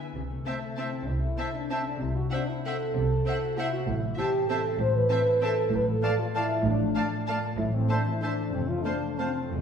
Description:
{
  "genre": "classical, orchestral ballroom waltz",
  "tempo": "170-212 BPM",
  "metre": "3/4",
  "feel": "rubato",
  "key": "A minor from 3.9 s",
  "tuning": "A4 = 440 Hz",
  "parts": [
    { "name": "concert harp", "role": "arpeggios", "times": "0.0-9.6 s", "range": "E2 to E5", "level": "-33 LUFS", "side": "left 3 dB", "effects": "none" },
    { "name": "clear studio cello section", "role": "bass", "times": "0.2-9.6 s", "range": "E2 to C3", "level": "-32 LUFS", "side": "right 2 dB", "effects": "none" },
    { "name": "clear symphonic double bass section", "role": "bass", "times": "0.2-9.6 s", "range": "E1 to C2", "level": "-35 LUFS", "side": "right 2 dB", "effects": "none" },
    { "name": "clear studio violin section", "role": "melody", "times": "0.5-9.3 s", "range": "F#5 to A5", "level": "-39 LUFS", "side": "left 2 dB", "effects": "none" },
    { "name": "bright clarinet", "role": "second line", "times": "0.5-9.3 s", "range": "C5 to D5", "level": "-39 LUFS", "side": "left 1 dB", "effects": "none" },
    { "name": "clear oboe", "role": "second line", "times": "0.5-9.3 s", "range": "E5 to F5", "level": "-41 LUFS", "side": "right 3 dB", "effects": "none" },
    { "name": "clear symphonic violin section", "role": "second line", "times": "0.5-9.3 s", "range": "C5 to F5", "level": "-43 LUFS", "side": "left 2 dB", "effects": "none" },
    { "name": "hollow flute section", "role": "second line", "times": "0.5-9.2 s", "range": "F#5 to A5", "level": "-38 LUFS", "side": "equal", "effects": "none" },
    { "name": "bright symphonic viola section", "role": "accompaniment", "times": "0.5-9.3 s", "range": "A3 to C4", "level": "-39 LUFS", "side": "right 1 dB", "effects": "none" },
    { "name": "mellow French horn section", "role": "sustained chords", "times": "0.5-9.6 s", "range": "G#3 to C5", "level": "-29 LUFS", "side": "equal", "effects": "none" }
  ],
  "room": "wet recital hall reverb, RT60 1.6 s",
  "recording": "heard from further back in the room",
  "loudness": "-25 LUFS",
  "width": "side -7 dB against mid",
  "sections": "0.0-9.6 A section",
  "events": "none",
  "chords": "0.2 Am/C; 2.0 F#m7b5/C; 3.9 Am; 5.7 Dm/A; 7.6 Am; 8.5 F"
}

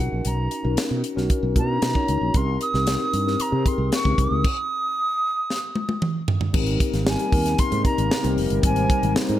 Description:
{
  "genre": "polished 1980s jazz-funk pop",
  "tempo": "114 BPM",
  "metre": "4/4",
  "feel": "straight",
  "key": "Ab major",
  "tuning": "A4 = 445 Hz",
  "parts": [
    { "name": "silver concert flute", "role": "melody", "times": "0.0-9.1 s", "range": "Gb5 to Eb6", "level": "-26 LUFS", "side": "right 1 dB", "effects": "none" },
    { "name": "mellow tine electric piano", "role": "accompaniment", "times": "0.0-9.4 s", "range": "G3 to C#5", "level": "-26 LUFS", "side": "left 3 dB", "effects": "medium stereo tremolo, analog chorus" },
    { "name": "fretless electric bass", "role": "bass", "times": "0.0-9.4 s", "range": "F1 to C3", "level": "-24 LUFS", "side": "right 1 dB", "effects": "lush chorus" },
    { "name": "tight funk drum kit", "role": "drums", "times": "0.2-9.4 s", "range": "crash cymbal, hi-hat, kick drum, snare drum, toms", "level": "-23 LUFS", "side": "equal", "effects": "gated reverb" },
    { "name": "chorused pulse-width pad", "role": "sustained chords", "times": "6.5-9.4 s", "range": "C3 to Bb4", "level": "-30 LUFS", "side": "right 2 dB", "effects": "none" }
  ],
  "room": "light reverb, small room ambience",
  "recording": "none",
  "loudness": "-20 LUFS",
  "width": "side -12 dB against mid",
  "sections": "0.0-6.5 A section; 6.5-9.4 B section",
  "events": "stop 4.4-6.5; drum fill 5.5-6.5",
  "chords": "0.0 Bmaj9; 2.3 Cm7; 4.4 N.C.; 6.5 Abmaj9"
}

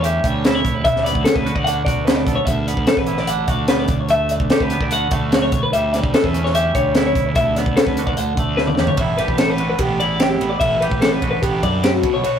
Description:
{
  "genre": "math rock and midwest emo",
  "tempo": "148 BPM",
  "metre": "4/4",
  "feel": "straight",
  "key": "unclear",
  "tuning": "A4 = 439 Hz",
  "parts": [
    { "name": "twangy electric guitar", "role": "accompaniment", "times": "0.0-12.4 s", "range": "D2 to A4", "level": "-25 LUFS", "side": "right 7 dB", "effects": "none" },
    { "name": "twelve-string electric guitar", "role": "arpeggios", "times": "0.0-12.4 s", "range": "F#4 to F#5", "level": "-20 LUFS", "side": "left 2 dB", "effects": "none" },
    { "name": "fuzz fingered electric bass", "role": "bass", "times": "0.0-12.4 s", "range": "A1 to F#2", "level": "-24 LUFS", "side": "equal", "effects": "overdrive" },
    { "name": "crisp fusion drum kit", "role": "drums", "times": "0.0-12.3 s", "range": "hi-hat, kick drum, ride cymbal, snare drum, toms", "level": "-19 LUFS", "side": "equal", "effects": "none" }
  ],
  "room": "light reverb",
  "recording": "rough rehearsal-room recording",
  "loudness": "-15 LUFS",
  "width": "side -8 dB against mid",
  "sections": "0.0-9.0 A section; 9.0-12.4 B section",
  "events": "drum fill 8.6-9.0",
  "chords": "0.0 A7/D (rootless); 0.8 Gmaj7/D; 2.5 D6; 3.9 Bm7/D; 5.5 A7/D; 7.4 Gmaj7/D; 8.2 D; 9.0 A9sus4"
}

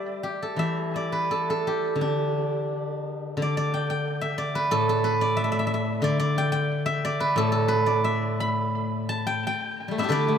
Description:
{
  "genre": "chinese traditional, Chinese solo plucked strings",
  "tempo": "81-93 BPM",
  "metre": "2/4",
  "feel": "rubato",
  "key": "D zhi mode",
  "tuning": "A4 = 439 Hz",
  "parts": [
    { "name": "steel-string zither", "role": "solo", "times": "0.0-10.4 s", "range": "A2 to B5", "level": "-23 LUFS", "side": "equal", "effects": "tape echo" }
  ],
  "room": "moderate plate reverb, RT60 3.8 s",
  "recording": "dreamy mix soaked in reverb",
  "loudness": "-23 LUFS",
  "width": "side -8 dB against mid",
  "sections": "0.0-3.4 A section; 3.4-10.4 B section",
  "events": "none",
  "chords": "none"
}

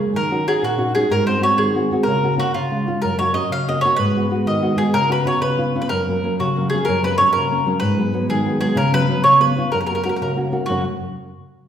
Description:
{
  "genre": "italian folk",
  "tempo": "126 BPM (dotted quarters)",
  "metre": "6/8",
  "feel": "straight",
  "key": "F# major",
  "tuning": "A4 = 440 Hz",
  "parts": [
    { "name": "mandolin", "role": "melody", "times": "0.0-10.8 s", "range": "E#4 to E#5", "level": "-19 LUFS", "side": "right 1 dB", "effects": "none" },
    { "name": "nylon-string guitar", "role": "accompaniment", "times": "0.0-10.8 s", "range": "F#2 to F#4", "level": "-20 LUFS", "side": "equal", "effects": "none" }
  ],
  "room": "wet recital hall reverb, RT60 1.4 s",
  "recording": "heard from further back in the room",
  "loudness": "-16 LUFS",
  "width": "side -9 dB against mid",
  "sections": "0.0-6.9 A section; 6.9-10.7 B section",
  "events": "none",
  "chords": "0.1 D#m7; 1.1 G#7; 2.0 F#/C#; 2.5 C#; 3.0 F#; 4.0 G#m7; 4.9 C#7sus4; 5.4 C#7; 5.9 F#; 7.8 G#m7; 8.8 C#7sus4; 9.2 C#7; 9.7 F#"
}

